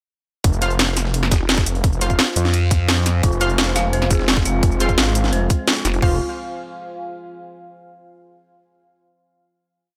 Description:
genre	dark technical drum and bass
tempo	172 BPM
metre	4/4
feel	straight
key	F minor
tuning	A4 = 440 Hz
part	detuned saw bass	bass	0.4-6.2 s	F1 to Ab1	-23 LUFS	equal	chorus, overdrive, sidechain pumping
part	breakbeat sampler-style drum kit	drums	0.4-6.0 s	hi-hat, snare drum	-33 LUFS	equal	none
part	drum and bass drum kit	drums	0.4-6.1 s	crash cymbal, kick drum, toms	-21 LUFS	equal	overdrive
part	drum and bass drum kit	drums	0.4-5.9 s	cabasa, hi-hat, snare drum	-22 LUFS	equal	overdrive
part	deep dark ambient pad	texture	2.0-7.4 s	F4 to Ab5	-33 LUFS	equal	chorus, built-in reverb, sidechain pumping
part	orchestra-hit-like synth stab	stabs	0.6-6.2 s	F4 to F5	-29 LUFS	equal	built-in reverb, tape echo
part	vowel-sweep wobble bass	bass	1.3-6.0 s	F1 to F2	-21 LUFS	equal	chorus, tube saturation
part	dark analog pad	sustained chords	3.2-6.2 s	Ab3 to Ab5	-31 LUFS	equal	chorus, sidechain pumping
part	dark detuned synth bell	arpeggios	3.2-6.2 s	F4 to F5	-29 LUFS	equal	chorus, phaser, sidechain pumping, tape echo
room	digital ambience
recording	none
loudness	-18 LUFS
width	mono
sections	0.4-6.0 drop; 6.0-7.4 final chord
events	drop 0.4-6.0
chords	0.4 Fm

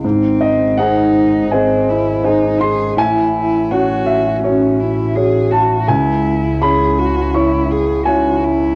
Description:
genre	neoclassical piano and strings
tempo	82 BPM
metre	4/4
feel	rubato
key	unclear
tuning	A4 = 441 Hz
part	warm cello	second line	0.0-8.8 s	B#3 to G#4	-21 LUFS	equal	cassette tape
part	warm concert grand piano	accompaniment	0.0-8.8 s	C#2 to C#6	-16 LUFS	equal	cassette tape
part	rich double bass	bass	0.0-8.8 s	G#1 to C#2	-25 LUFS	equal	none
room	moderate booth ambience, RT60 0.2 s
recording	home recording on cassette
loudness	-15 LUFS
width	mono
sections	0.0-8.8 A section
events	none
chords	0.0 G#; 3.0 F#m7/A; 5.9 C#m

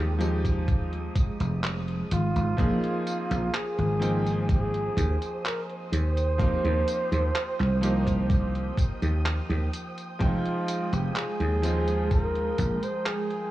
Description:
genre	vaporwave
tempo	63 BPM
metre	4/4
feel	straight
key	F minor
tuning	A4 = 439 Hz
part	breathy flugelhorn	melody	0.0-13.5 s	F4 to C5	-31 LUFS	right 1 dB	vintage 12-bit sampler grit, tape echo
part	bright electric grand piano	accompaniment	0.0-13.5 s	F3 to G5	-32 LUFS	equal	lush chorus, analog delay
part	soft string machine	sustained chords	0.0-13.5 s	Ab3 to Eb6	-38 LUFS	right 2 dB	ensemble chorus
part	dry thumbed slap bass	bass	0.0-12.8 s	F1 to Eb2	-26 LUFS	equal	none
part	detuned 8-bit digital drum machine	drums	0.2-13.5 s	handclaps, hi-hat, tambourine	-36 LUFS	right 1 dB	vintage 12-bit sampler grit
part	electronic kick drum	drums	0.4-12.8 s	none	-26 LUFS	equal	vintage 12-bit sampler grit
room	light reverb, digital ambience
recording	cassette tape, small room ambience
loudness	-24 LUFS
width	side -15 dB against mid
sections	0.0-13.5 A section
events	none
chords	0.0 Fm9; 2.6 Bb9sus4; 5.9 Eb6; 10.2 Fm9

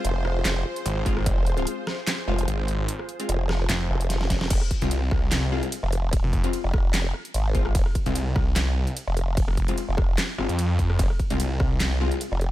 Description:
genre	heavy wobble dubstep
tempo	148 BPM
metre	4/4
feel	swing 54% on 16ths, half-time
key	F minor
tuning	A4 = 439 Hz
part	supersaw pad	sustained chords	0.0-4.5 s	F4 to C5	-34 LUFS	right 1 dB	sidechain pumping
part	orchestra-hit-like synth stab	stabs	0.0-12.2 s	Ab3 to F4	-33 LUFS	left 5 dB	built-in reverb, digital delay
part	formant-sweep wobble bass	bass	0.0-12.5 s	F1 to Ab1	-24 LUFS	equal	chorus, overdrive
part	dubstep drum kit	drums	0.0-12.5 s	crash cymbal, handclaps, hi-hat, ride cymbal, rim click, snare drum	-30 LUFS	right 1 dB	overdrive
part	snarling distorted saw bass	bass	0.9-12.1 s	F1 to F2	-25 LUFS	equal	distortion, overdrive
part	electronic kick drum	drums	1.1-1.4, 4.3-11.7 s	none	-24 LUFS	equal	overdrive
room	little or no reverb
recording	none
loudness	-22 LUFS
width	side -15 dB against mid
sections	0.0-4.5 A section; 4.5-12.5 A section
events	drop 0.0-4.5, 4.5-12.5; drum fill 4.1-4.5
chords	0.0 Fm

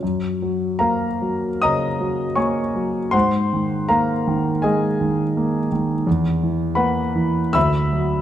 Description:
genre	classical, impressionist solo piano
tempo	69-85 BPM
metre	4/4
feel	rubato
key	unclear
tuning	A4 = 439 Hz
part	warm concert grand piano	solo	0.0-8.2 s	D2 to Fb6	-18 LUFS	equal	none
room	moderate scoring stage reverb, RT60 2.0 s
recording	close, detailed microphones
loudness	-18 LUFS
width	side -11 dB against mid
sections	0.0-8.2 A section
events	none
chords	0.0 Gbmaj7; 3.1 Ab69; 6.1 E5; 7.6 D

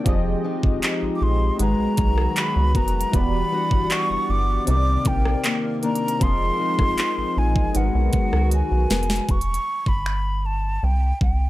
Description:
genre	contemporary R&B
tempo	78 BPM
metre	4/4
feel	straight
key	unclear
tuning	A4 = 440 Hz
part	warm analog keys	accompaniment	0.0-9.3 s	C3 to Eb5	-28 LUFS	right 1 dB	chorus
part	hollow soft pad	sustained chords	0.0-9.3 s	D#3 to G5	-31 LUFS	equal	chorus, sidechain pumping
part	fingerpicked steel-string acoustic guitar	arpeggios	0.0-9.4 s	C3 to A#4	-29 LUFS	left 5 dB	none
part	rubbery square bass	bass	0.1-11.5 s	E1 to C#2	-22 LUFS	equal	none
part	trap drum kit	drums	0.1-11.4 s	finger snaps, handclaps, hi-hat, kick drum, rim click, snare drum	-23 LUFS	equal	overdrive
part	breathy mellow silver concert flute	melody	1.2-11.5 s	F#5 to D6	-26 LUFS	equal	digital delay
room	digital ambience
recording	none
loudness	-19 LUFS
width	side -16 dB against mid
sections	0.0-9.3 A section; 9.3-11.5 B section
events	drum fill 8.5-9.3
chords	0.1 Fm9; 1.6 G#m9; 3.1 Em9; 4.7 Cm9; 6.2 Fm7; 7.8 G#m9; 9.3 Em; 10.8 C5

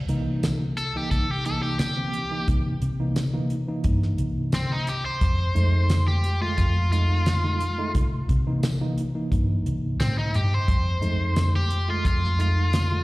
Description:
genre	straight-eighth soul blues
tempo	88 BPM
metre	4/4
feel	straight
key	unclear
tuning	A4 = 441 Hz
part	vintage muted fingered electric bass	bass	0.0-13.0 s	C2 to C3	-24 LUFS	equal	none
part	tine electric piano	accompaniment	0.1-13.0 s	E3 to F4	-31 LUFS	right 2 dB	overdrive, medium stereo tremolo, slapback echo
part	damped 70s drum kit	drums	0.1-12.9 s	hi-hat, kick drum, snare drum, tambourine	-26 LUFS	equal	none
part	cranked stack guitar	melody	0.8-13.0 s	C4 to C5	-28 LUFS	left 1 dB	overdrive, slapback echo, tape echo
room	little or no reverb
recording	live gig heard through the venue's PA, recital hall reverb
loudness	-21 LUFS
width	side -20 dB against mid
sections	0.0-13.0 A section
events	overdriven electric guitar solo 0.0-13.0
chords	0.0 C7#9; 5.2 F7#9; 7.9 C7#9; 10.7 F7#9

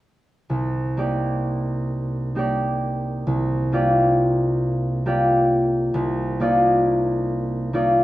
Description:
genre	classical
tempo	44 BPM (dotted quarters)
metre	6/8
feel	rubato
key	C minor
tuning	A4 = 439 Hz
part	concert harp	accompaniment	0.5-8.0 s	C2 to D5	-19 LUFS	equal	none
room	light reverb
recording	worn, warbling old tape, cassette tape, warbly pitch drift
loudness	-19 LUFS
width	side -16 dB against mid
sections	0.5-8.0 A section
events	none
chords	0.5 Cm9; 3.3 Gm7/C; 5.9 Cm11

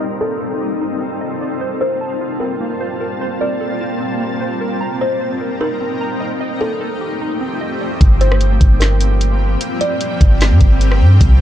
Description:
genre	hip hop, atmospheric cloud-rap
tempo	150 BPM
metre	4/4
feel	half-time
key	G minor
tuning	A4 = 440 Hz
part	shimmering ambient pad	sustained chords	0.0-11.4 s	Eb3 to A5	-21 LUFS	left 1 dB	chorus, built-in reverb, sidechain pumping, low-pass filter
part	warbly dusty pluck	arpeggios	0.0-8.0 s	Bb3 to Bb5	-27 LUFS	right 4 dB	chorus, low-pass filter, tape echo
part	kalimba	melody	0.2-10.4 s	A4 to D5	-24 LUFS	equal	low-pass filter, tape echo
part	soft 808-style bass	bass	8.0-11.4 s	G1 to G2	-11 LUFS	equal	none
part	smooth R&B drum kit	drums	8.0-11.3 s	hi-hat, kick drum, rim click, snare drum	-13 LUFS	equal	vintage 12-bit sampler grit
room	little or no reverb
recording	dark, warm production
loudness	-14 LUFS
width	side -11 dB against mid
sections	0.0-8.0 A section; 8.0-11.4 B section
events	filter sweep 0.0-8.0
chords	0.0 F13; 1.6 Gm11; 4.8 Cm7; 6.4 F13; 8.0 Gm7

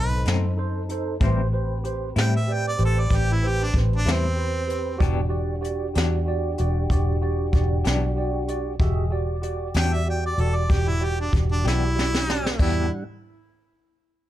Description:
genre	slow blues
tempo	63 BPM (dotted quarters)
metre	12/8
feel	straight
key	E minor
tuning	A4 = 440 Hz
part	clear harmonica	melody	0.0-12.9 s	C4 to G5	-28 LUFS	right 1 dB	plate reverb
part	barky tine electric piano	accompaniment	0.0-12.9 s	D#4 to E5	-31 LUFS	right 5 dB	lush chorus
part	tonewheel organ	sustained chords	0.0-13.0 s	G3 to F#5	-34 LUFS	left 1 dB	slow rotary speaker
part	vintage muted fingered electric bass	bass	0.0-12.9 s	E1 to A2	-23 LUFS	equal	none
part	semi-hollow electric guitar	accompaniment	0.3-12.9 s	A2 to G4	-30 LUFS	left 6 dB	tremolo
part	jazz brush drum kit	drums	0.3-12.7 s	crash cymbal, hi-hat, kick drum, snare drum	-26 LUFS	equal	none
room	light reverb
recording	dark, warm production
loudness	-21 LUFS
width	side -13 dB against mid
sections	0.0-12.6 A section; 12.6-14.3 B section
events	drum fill 11.6-12.6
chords	0.0 B7b9; 1.2 Am7; 5.0 Em7

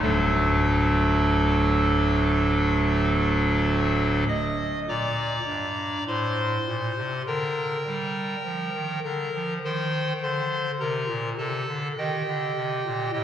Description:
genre	classical, chorale-style piece for pipe organ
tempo	51 BPM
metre	4/4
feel	rubato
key	G minor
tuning	A4 = 435 Hz
part	pipe organ, clarinet reed	solo	0.0-13.2 s	D1 to Eb6	-22 LUFS	equal	none
room	wet church reverb, RT60 3.4 s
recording	heard from further back in the room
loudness	-22 LUFS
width	side -10 dB against mid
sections	0.0-4.9 A section; 4.9-13.2 B section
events	none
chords	0.0 D; 4.9 Gm; 9.6 Cm

